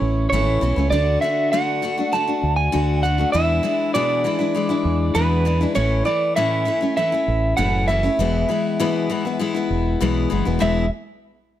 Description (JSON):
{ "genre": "folk rock and heartland rock", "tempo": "99 BPM", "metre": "4/4", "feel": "straight", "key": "E mixolydian", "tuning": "A4 = 440 Hz", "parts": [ { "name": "electric slide guitar", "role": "melody", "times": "0.0-10.9 s", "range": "B4 to A5", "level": "-22 LUFS", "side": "right 2 dB", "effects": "none" }, { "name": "picked steel-string acoustic guitar", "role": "accompaniment", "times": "0.0-10.8 s", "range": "E2 to F#4", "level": "-22 LUFS", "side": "left 4 dB", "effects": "none" }, { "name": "fingered electric bass", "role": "bass", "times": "0.0-10.9 s", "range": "E1 to E2", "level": "-21 LUFS", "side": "right 1 dB", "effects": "none" } ], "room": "light reverb, studio reverb", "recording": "none", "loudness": "-18 LUFS", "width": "side -12 dB against mid", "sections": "0.0-10.6 A section; 10.6-11.6 B section", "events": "none", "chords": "0.0 A; 0.9 D; 3.3 E7; 5.8 A; 8.2 E" }